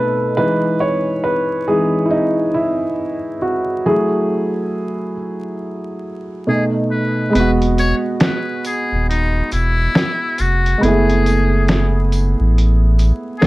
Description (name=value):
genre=lo-fi hip hop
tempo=69 BPM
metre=4/4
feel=swing 61% on 16ths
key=E major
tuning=A4 = 440 Hz
part: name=felt-muted upright piano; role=accompaniment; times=0.0-13.5 s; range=B2 to D#5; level=-17 LUFS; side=right 1 dB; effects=cassette tape, low-pass filter
part: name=trumpet with metal mute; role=melody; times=6.5-13.5 s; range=D#4 to C#5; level=-21 LUFS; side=left 2 dB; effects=low-pass filter
part: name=sub bass with octave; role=bass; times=7.3-13.5 s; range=D#1 to A1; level=-15 LUFS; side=equal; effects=none
part: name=lo-fi sampler-style drum kit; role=drums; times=7.4-13.5 s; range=finger snaps, hi-hat, snare drum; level=-18 LUFS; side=equal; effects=none
part: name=tambourine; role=percussion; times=7.8-13.2 s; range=none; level=-38 LUFS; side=left 4 dB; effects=none
room=light reverb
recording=dark, warm production, vinyl crackle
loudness=-14 LUFS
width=side -19 dB against mid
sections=0.0-7.3 A section; 7.3-13.5 B section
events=felt piano solo 0.0-7.3; kick muted 7.3-13.5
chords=0.4 Emaj7; 3.9 F#m9; 6.5 B7; 7.3 Emaj7; 10.8 F#m11